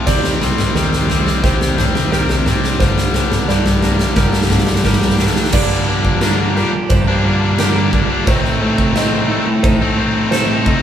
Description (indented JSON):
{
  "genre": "post-rock",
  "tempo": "88 BPM",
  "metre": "4/4",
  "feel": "straight",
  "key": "G minor",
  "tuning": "A4 = 439 Hz",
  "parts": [
    { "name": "phased analog pad", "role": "sustained chords", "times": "0.0-10.8 s", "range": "Eb3 to A5", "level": "-28 LUFS", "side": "right 2 dB", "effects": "none" },
    { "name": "felt-muted upright piano", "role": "arpeggios", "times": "0.0-10.8 s", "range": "Bb4 to Eb5", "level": "-26 LUFS", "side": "right 4 dB", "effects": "tape echo" },
    { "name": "twangy electric guitar", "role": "arpeggios", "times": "0.0-10.8 s", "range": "G2 to A4", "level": "-26 LUFS", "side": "equal", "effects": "none" },
    { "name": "overdriven electric guitar", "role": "riff", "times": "0.0-10.8 s", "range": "G2 to Eb4", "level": "-18 LUFS", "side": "left 4 dB", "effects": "none" },
    { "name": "growling picked electric bass", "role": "bass", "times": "0.1-10.7 s", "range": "Eb2 to A2", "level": "-20 LUFS", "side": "equal", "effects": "overdrive" },
    { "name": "huge arena drum kit", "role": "drums", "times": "0.1-10.8 s", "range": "crash cymbal, kick drum, snare drum, toms", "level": "-16 LUFS", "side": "equal", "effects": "none" },
    { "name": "cranked stack guitar", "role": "riff", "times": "5.5-10.8 s", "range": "G2 to Eb4", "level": "-22 LUFS", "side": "right 6 dB", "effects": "overdrive" }
  ],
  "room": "moderate studio reverb, RT60 0.8 s",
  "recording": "band playing live in one room",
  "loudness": "-13 LUFS",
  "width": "side -9 dB against mid",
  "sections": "0.0-5.5 A section; 5.5-10.8 B section",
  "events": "build-up 0.0-5.5; drum fill 0.0-5.5",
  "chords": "0.1 Cmadd9/Eb; 2.8 Gm; 5.5 Gm7; 8.3 Adim"
}